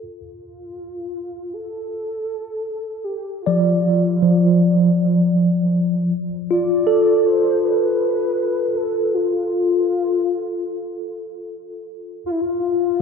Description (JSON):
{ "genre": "ambient", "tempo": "79 BPM", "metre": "4/4", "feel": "straight", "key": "D dorian", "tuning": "A4 = 440 Hz", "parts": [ { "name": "warm velvety synth lead", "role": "melody", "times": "0.0-13.0 s", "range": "E4 to D5", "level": "-23 LUFS", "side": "left 3 dB", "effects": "chorus, tape echo" }, { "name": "mellow tine electric piano", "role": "arpeggios", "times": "0.0-12.2 s", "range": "F3 to D5", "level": "-17 LUFS", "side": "equal", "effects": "medium stereo tremolo, tape echo" } ], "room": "wet lush hall reverb, RT60 3.2 s", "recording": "dark, warm production", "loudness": "-17 LUFS", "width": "side -6 dB against mid", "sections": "0.0-13.0 A section", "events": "fade-in on soft synth lead 0.0-13.0", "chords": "0.0 Dm; 6.1 F; 12.2 N.C.", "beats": "| 0.01 0.79 1.56 2.32 | 3.08 3.84 4.60 5.36 | 6.11 6.87 7.62 8.38 | 9.14 9.90 10.67 11.45 | 12.22 12.99" }